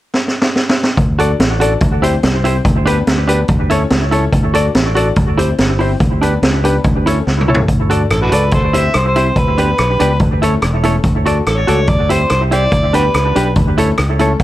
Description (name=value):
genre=ska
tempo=143 BPM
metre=4/4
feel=straight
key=D major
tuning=A4 = 439 Hz
part: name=street-band drum kit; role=drums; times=0.1-14.4 s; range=hi-hat, kick drum, rim click, snare drum, toms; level=-16 LUFS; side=equal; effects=none
part: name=fingered electric bass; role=bass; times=1.0-14.4 s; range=E1 to D2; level=-16 LUFS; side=equal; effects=none
part: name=semi-hollow electric guitar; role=accompaniment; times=1.2-14.3 s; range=D4 to D5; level=-18 LUFS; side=right 3 dB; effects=analog delay
part: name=warm upright piano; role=stabs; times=1.2-14.3 s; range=G3 to D5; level=-21 LUFS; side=left 5 dB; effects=analog delay
part: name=overdriven harmonica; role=melody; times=8.1-13.5 s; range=D4 to E5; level=-17 LUFS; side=equal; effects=analog delay
room=light reverb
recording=none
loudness=-11 LUFS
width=side -14 dB against mid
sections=1.0-7.7 A section; 7.7-14.4 B section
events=drum fill 0.1-1.0, 7.3-7.7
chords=0.0 N.C.; 1.0 D; 1.8 C/D; 2.7 G/D; 3.5 A/D; 4.3 D; 5.2 C/D; 6.0 G/D; 6.8 A/D; 7.7 D; 8.5 C/D; 9.4 G/D; 10.2 A/D; 11.0 D; 11.9 C/D; 12.7 G/D; 13.6 A/D